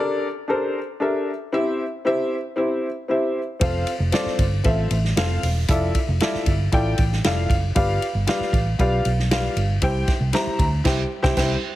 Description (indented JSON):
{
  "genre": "uptempo 1960s-style soul",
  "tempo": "116 BPM",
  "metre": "4/4",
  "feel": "straight",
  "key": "unclear",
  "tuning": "A4 = 439 Hz",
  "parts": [
    { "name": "dark upright piano", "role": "accompaniment", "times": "0.0-11.6 s", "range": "C4 to Bb5", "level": "-23 LUFS", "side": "left 1 dB", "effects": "none" },
    { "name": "vintage muted fingered electric bass", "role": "bass", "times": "3.6-11.5 s", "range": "E1 to D2", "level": "-22 LUFS", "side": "right 1 dB", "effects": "none" },
    { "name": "vintage drum kit", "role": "drums", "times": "3.6-11.5 s", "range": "crash cymbal, hi-hat, kick drum, ride cymbal, snare drum", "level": "-23 LUFS", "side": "right 1 dB", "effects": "none" }
  ],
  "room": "light reverb, small room ambience",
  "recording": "heavily compressed radio sound",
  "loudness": "-19 LUFS",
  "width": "side -15 dB against mid",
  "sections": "0.0-11.8 A section",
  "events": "band accent 10.9-11.8",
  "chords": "0.0 Gmadd9; 1.5 C; 3.6 F; 5.7 Dmadd9/F; 7.8 G7; 9.8 C",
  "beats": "0.49 1.02 | 1.54 2.06 2.58 3.10 | 3.62 4.14 4.66 5.17 | 5.69 6.21 6.73 7.24 | 7.76 8.28 8.79 9.31 | 9.82 10.34 10.86 11.37"
}